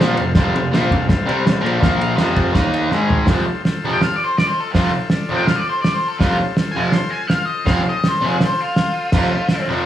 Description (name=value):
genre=garage rock duo or trio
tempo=164 BPM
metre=4/4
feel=straight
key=F mixolydian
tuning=A4 = 443 Hz
part: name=combo organ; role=sustained chords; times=0.0-9.9 s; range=Eb4 to F5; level=-26 LUFS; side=left 2 dB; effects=none
part: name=fuzz guitar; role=riff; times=0.0-9.8 s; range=F2 to Eb4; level=-19 LUFS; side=equal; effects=distortion
part: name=cloth-damped thuddy drum kit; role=drums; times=0.0-9.6 s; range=crash cymbal, hi-hat, kick drum, ride cymbal, snare drum, toms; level=-18 LUFS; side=right 1 dB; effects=none
part: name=octave-fuzz lead guitar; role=melody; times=3.9-9.7 s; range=F4 to C6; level=-21 LUFS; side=left 1 dB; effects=distortion
room=moderate large studio reverb, RT60 0.8 s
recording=band playing live in one room, small room ambience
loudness=-15 LUFS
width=side -11 dB against mid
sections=0.0-3.3 A section; 3.3-9.9 B section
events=drum fill 2.9-3.3; lead electric guitar solo 3.3-9.9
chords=0.0 F; 1.8 Bb5; 2.2 F; 2.5 Eb5; 2.9 Ab5; 3.3 F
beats=| 0.34 0.71 1.08 1.44 | 1.81 2.18 2.54 2.91 | 3.28 3.64 4.01 4.38 | 4.74 5.11 5.47 5.84 | 6.21 6.57 6.94 7.30 | 7.67 8.03 8.40 8.76 | 9.13 9.49